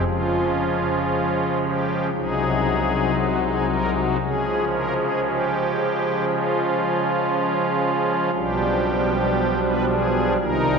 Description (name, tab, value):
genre	classical, chorale-style piece for pipe organ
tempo	58 BPM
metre	4/4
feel	rubato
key	unclear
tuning	A4 = 440 Hz
part	pipe organ, strings celeste	solo	0.0-10.8 s	B1 to B4	-19 LUFS	equal	none
room	wet cathedral reverb, RT60 4.5 s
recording	minimal, uncompressed stereo recording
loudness	-19 LUFS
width	side -5 dB against mid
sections	0.0-10.8 A section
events	none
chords	0.1 Db; 2.1 Ab7/C; 4.2 Db; 8.3 G7/B